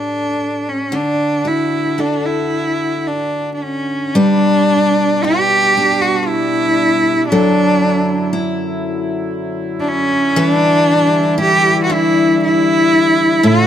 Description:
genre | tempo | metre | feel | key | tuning
celtic folk, Celtic slow air | 58 BPM | 3/4 | rubato | D major | A4 = 440 Hz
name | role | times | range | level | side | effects
clear cello | melody | 0.0-13.7 s | C#4 to G4 | -14 LUFS | equal | none
picked steel-string acoustic guitar | accompaniment | 0.0-13.7 s | A2 to B4 | -18 LUFS | left 1 dB | none
mellow brass ensemble | sustained chords | 4.2-13.7 s | F#2 to E4 | -24 LUFS | right 2 dB | none
room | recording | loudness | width
light reverb | close, detailed microphones | -12 LUFS | side -10 dB against mid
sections
0.0-4.1 A section; 4.1-13.7 B section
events
none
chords
0.0 A5; 0.9 D; 4.1 G; 7.3 Dadd9/F#; 10.4 Em7

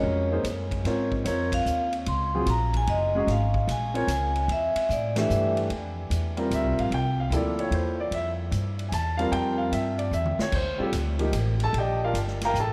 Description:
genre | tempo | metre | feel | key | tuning
modal jazz | 149 BPM | 3/4 | swing 66% on 8ths | Ab mixolydian, F major from 5.7 s | A4 = 439 Hz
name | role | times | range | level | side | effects
vibraphone with medium hard mallets | melody | 0.0-5.6 s | Db5 to C6 | -31 LUFS | equal | none
warm concert grand piano | accompaniment | 0.0-12.7 s | E3 to Bb5 | -30 LUFS | equal | none
upright bass | bass | 0.0-12.7 s | Gb1 to A2 | -30 LUFS | equal | none
swinging big-band drum kit | drums | 0.4-12.7 s | crash cymbal, hi-hat, kick drum, ride cymbal, snare drum, toms | -38 LUFS | equal | none
room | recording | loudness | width
wet cathedral reverb, RT60 5.4 s | in a vast, echoing space | -26 LUFS | mono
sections
0.0-5.7 A section; 5.7-12.7 B section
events
band accent 5.1; drum fill 10.1-10.5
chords
0.0 Ab13sus4; 4.5 Emadd11; 5.7 Fmaj9; 10.5 Ebmaj9

